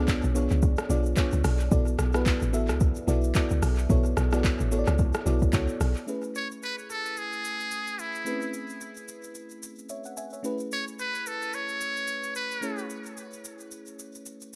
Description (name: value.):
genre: amapiano.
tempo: 110 BPM.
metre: 4/4.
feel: swing 58% on 16ths.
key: unclear.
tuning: A4 = 441 Hz.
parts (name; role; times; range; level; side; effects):
bell-like FM electric piano; accompaniment; 0.0-14.6 s; A3 to G#5; -35 LUFS; equal; chorus.
deep log drum bass; bass; 0.0-6.0 s; A1 to C#2; -28 LUFS; equal; none.
smooth R&B drum kit; drums; 0.1-14.6 s; handclaps, hi-hat, kick drum, rim click, shaker; -31 LUFS; equal; tape echo.
trumpet with metal mute; melody; 6.4-12.9 s; E4 to C#5; -34 LUFS; equal; tape echo.
room: little or no reverb.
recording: echo-heavy mix.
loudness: -27 LUFS.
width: mono.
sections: 0.0-6.1 A section; 6.1-14.6 B section.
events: drop 0.0-6.1.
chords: 0.0 C#7b9; 1.7 E9sus4; 6.1 Amaj9.